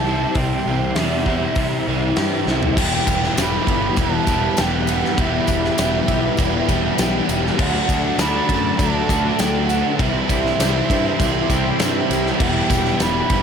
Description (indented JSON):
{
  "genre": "rock, shoegaze and dream pop",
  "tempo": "100 BPM",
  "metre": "4/4",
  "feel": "straight",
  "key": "unclear",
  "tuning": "A4 = 439 Hz",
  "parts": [
    { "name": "mellow hollow concert flute", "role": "melody", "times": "0.0-13.4 s", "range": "E5 to B5", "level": "-26 LUFS", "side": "right 3 dB", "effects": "analog delay" },
    { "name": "phased analog pad", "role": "sustained chords", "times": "0.0-13.4 s", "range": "F#3 to C6", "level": "-30 LUFS", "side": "left 1 dB", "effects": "phaser, chorus" },
    { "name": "electric guitar through a small old amp", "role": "arpeggios", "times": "0.0-13.4 s", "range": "F#3 to E4", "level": "-30 LUFS", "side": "left 1 dB", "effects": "none" },
    { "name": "biting overdriven guitar", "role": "riff", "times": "0.0-13.4 s", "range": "E2 to G4", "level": "-24 LUFS", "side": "right 14 dB", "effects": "reverse reverb" },
    { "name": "crunchy overdriven guitar", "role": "riff", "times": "0.0-13.4 s", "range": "E2 to G4", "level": "-24 LUFS", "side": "left 11 dB", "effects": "ensemble chorus" },
    { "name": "fuzz picked electric bass", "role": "bass", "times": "0.0-13.4 s", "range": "E1 to C3", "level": "-24 LUFS", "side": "equal", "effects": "overdrive" },
    { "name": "big rock drum kit", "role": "drums", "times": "0.3-13.4 s", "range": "crash cymbal, hi-hat, kick drum, ride cymbal, snare drum, toms", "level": "-23 LUFS", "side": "equal", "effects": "none" },
    { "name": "biting overdriven guitar", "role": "riff", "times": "2.8-13.4 s", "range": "C3 to E4", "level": "-27 LUFS", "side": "left 1 dB", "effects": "none" },
    { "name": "tambourine", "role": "percussion", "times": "3.1-13.1 s", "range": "none", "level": "-34 LUFS", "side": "left 10 dB", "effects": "none" }
  ],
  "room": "light reverb",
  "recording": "none",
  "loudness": "-16 LUFS",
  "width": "side -7 dB against mid",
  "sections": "0.0-2.8 A section; 2.8-13.4 B section",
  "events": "drum fill 2.5-2.8",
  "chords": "0.0 C; 2.8 Em; 7.6 D; 10.0 C; 12.4 Em",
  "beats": "| 0.36 0.97 1.57 2.17 | 2.78 3.38 3.98 4.58 | 5.18 5.79 6.39 6.99 | 7.59 8.19 8.79 9.39 | 9.99 10.60 11.20 11.80 | 12.40 13.00"
}